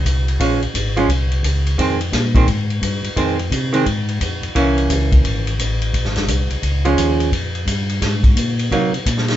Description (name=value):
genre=soul jazz organ trio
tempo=173 BPM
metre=4/4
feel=swing 64% on 8ths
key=F minor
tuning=A4 = 442 Hz
part: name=mellow tonewheel organ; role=bass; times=0.0-9.4 s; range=F1 to C3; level=-20 LUFS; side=left 1 dB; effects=chorus vibrato, slow rotary speaker
part: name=vintage drum kit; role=drums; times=0.1-9.4 s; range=hi-hat, kick drum, ride cymbal, snare drum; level=-20 LUFS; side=equal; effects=none
part: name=archtop guitar, miked and amplified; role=accompaniment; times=0.4-8.9 s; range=Eb3 to Eb4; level=-18 LUFS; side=right 3 dB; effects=none
room=light reverb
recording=band playing live in one room, nothing above 7.8 kHz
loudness=-15 LUFS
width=side -12 dB against mid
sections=0.0-9.4 A section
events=none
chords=0.0 Bbm7; 1.8 Fm7; 4.5 C7b9; 5.9 Bbm7; 7.3 Fm; 8.7 Cm7b5